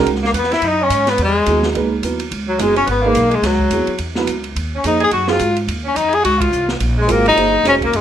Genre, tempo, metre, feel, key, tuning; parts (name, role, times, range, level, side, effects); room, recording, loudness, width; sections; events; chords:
modal jazz; 214 BPM; 4/4; swing 59% on 8ths; A4 = 440 Hz
warm upright piano; accompaniment; 0.0-7.8 s; F#3 to B#4; -19 LUFS; right 6 dB
upright bass; bass; 0.0-8.0 s; E#1 to G#2; -21 LUFS; right 1 dB
open jazz drum kit; drums; 0.1-8.0 s; hi-hat, kick drum, ride cymbal, snare drum; -25 LUFS; right 2 dB
bright tenor saxophone; second line; 0.2-8.0 s; F#3 to G#4; -22 LUFS; right 5 dB
breathy tenor saxophone; melody; 0.3-8.0 s; F#3 to G#4; -16 LUFS; left 4 dB
moderate large studio reverb, RT60 0.9 s; -14 LUFS; side -10 dB against mid
0.1-8.0 A section
band accent 6.4
0.1 C#m11; 4.6 D#m11